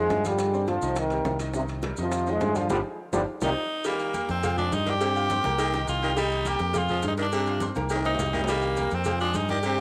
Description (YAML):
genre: latin, salsa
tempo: 208 BPM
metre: 4/4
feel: straight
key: C minor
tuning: A4 = 444 Hz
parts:
  - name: mellow trombone section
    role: melody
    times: 0.0-3.5 s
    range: G2 to Ab3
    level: -29 LUFS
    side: equal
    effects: cassette tape, tape echo
  - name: bright grand piano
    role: accompaniment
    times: 0.0-9.7 s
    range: Eb3 to F6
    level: -37 LUFS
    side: equal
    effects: cassette tape
  - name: fingered electric bass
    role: bass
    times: 0.0-9.8 s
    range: G1 to G2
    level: -33 LUFS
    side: equal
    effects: none
  - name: bongos and cowbell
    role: percussion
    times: 0.1-9.8 s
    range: none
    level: -38 LUFS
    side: equal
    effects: none
  - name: congas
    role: percussion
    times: 0.1-9.8 s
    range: none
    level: -41 LUFS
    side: equal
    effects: none
  - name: maracas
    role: percussion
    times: 0.1-9.8 s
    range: none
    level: -47 LUFS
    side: equal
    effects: none
  - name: timbales and agogo bells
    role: percussion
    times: 0.1-9.8 s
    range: none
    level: -38 LUFS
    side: equal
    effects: none
  - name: raspy tenor saxophone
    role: melody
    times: 3.4-9.8 s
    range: Bb3 to G4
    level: -30 LUFS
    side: equal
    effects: cassette tape
  - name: breathy baritone saxophone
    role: second line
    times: 3.9-9.8 s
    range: C3 to G3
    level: -33 LUFS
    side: equal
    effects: cassette tape
room: light reverb, small room ambience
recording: home recording on cassette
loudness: -26 LUFS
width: mono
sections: 0.0-3.9 A section; 3.9-9.8 B section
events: band accent 2.7-3.9; drum fill 3.0-3.9, 7.8-8.5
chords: 0.4 G7sus4; 1.0 Cm7; 2.1 Fm7; 2.7 G5; 3.3 Cm; 3.9 F9sus4; 4.4 Fm7; 5.0 G7sus4; 5.6 Cm7; 6.7 Fm7; 7.3 G7sus4; 7.9 Cm7; 9.1 Fm7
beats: 0.10 | 0.39 0.68 0.97 1.26 | 1.55 1.84 2.13 2.42 | 2.70 2.99 3.28 3.57 | 3.86 4.15 4.44 4.73 | 5.01 5.30 5.59 5.88 | 6.17 6.46 6.75 7.04 | 7.33 7.62 7.90 8.19 | 8.48 8.77 9.06 9.35 | 9.64